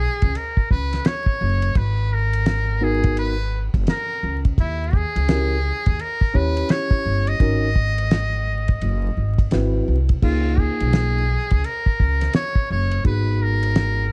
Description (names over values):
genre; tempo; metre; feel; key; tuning
hip hop, jazz-hop; 85 BPM; 4/4; swing 63% on 16ths; unclear; A4 = 439 Hz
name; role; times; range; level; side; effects
trumpet with metal mute; melody; 0.0-14.1 s; Fb4 to Eb5; -28 LUFS; equal; none
upright bass; bass; 0.0-14.1 s; Gb1 to Eb2; -24 LUFS; equal; none
cloth-damped thuddy drum kit; drums; 0.2-14.0 s; crash cymbal, hi-hat, kick drum, ride cymbal, snare drum; -22 LUFS; equal; none
mellow tine electric piano; accompaniment; 2.8-14.1 s; Bb3 to Db5; -27 LUFS; equal; none
room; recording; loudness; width
small room ambience; dark, warm production, vinyl crackle; -21 LUFS; mono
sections
0.0-10.2 A section; 10.2-14.1 A section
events
break 0.0-1.8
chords
0.0 Db5; 1.8 Abm9; 4.6 Eb7b9; 7.4 Ab7sus4; 9.5 Ab7alt; 10.2 Db6; 13.1 Abm9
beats
0.35 1.05 | 1.76 2.46 3.17 3.88 | 4.58 5.29 5.99 6.70 | 7.41 8.11 8.82 9.52 | 10.23 10.93 11.64 12.35 | 13.05 13.76